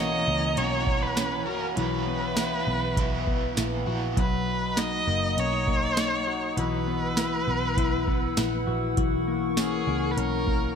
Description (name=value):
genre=dream pop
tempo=100 BPM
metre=4/4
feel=straight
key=B major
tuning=A4 = 440 Hz
part: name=rich erhu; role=melody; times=0.0-10.8 s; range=G#4 to D#5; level=-29 LUFS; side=right 1 dB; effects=ping-pong delay
part: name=overdriven semi-hollow guitar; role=accompaniment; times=0.0-4.2 s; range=B2 to F#4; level=-33 LUFS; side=right 5 dB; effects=tremolo, wide subtle chorus
part: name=warbly tape-like pad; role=sustained chords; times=0.0-10.8 s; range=E4 to E6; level=-31 LUFS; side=left 2 dB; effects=chorus, built-in reverb
part: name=semi-hollow electric guitar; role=arpeggios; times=0.0-10.8 s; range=E3 to F#4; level=-31 LUFS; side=left 6 dB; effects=wide subtle chorus, ping-pong delay
part: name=vintage muted picked electric bass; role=bass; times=0.0-10.8 s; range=F#1 to C#2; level=-31 LUFS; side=right 1 dB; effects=none
part: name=booming analog drum machine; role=drums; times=0.6-10.7 s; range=hi-hat, kick drum, snare drum, tambourine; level=-28 LUFS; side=right 1 dB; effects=overdrive, gated reverb
room=moderate lush hall reverb, RT60 1.8 s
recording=bright 1980s-style digital production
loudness=-24 LUFS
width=side -7 dB against mid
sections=0.0-4.2 A section; 4.2-10.8 A section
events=none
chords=0.0 F#7/B; 1.8 Esus2/B; 4.2 Bmaj7; 6.6 Esus2/B; 9.0 F#7/B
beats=0.57 1.17 | 1.77 2.37 2.97 3.57 | 4.17 4.77 5.37 5.97 | 6.57 7.17 7.77 8.37 | 8.97 9.57 10.17